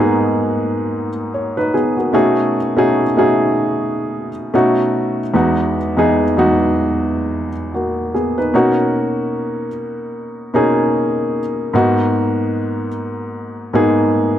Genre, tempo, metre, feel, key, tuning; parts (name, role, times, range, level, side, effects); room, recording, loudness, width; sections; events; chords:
R&B; 75 BPM; 4/4; swing 58% on 16ths; B major; A4 = 440 Hz
dark baby grand piano; solo; 0.0-14.4 s; E2 to C#5; -15 LUFS; equal
light reverb, small room ambience; dry, gritty hardware recording; -14 LUFS; side -11 dB against mid
0.0-8.5 A section; 8.5-14.4 B section
0.0 G#m9; 2.1 B13; 4.5 B7; 5.3 Emaj9; 8.5 Bmaj9; 11.7 G#m9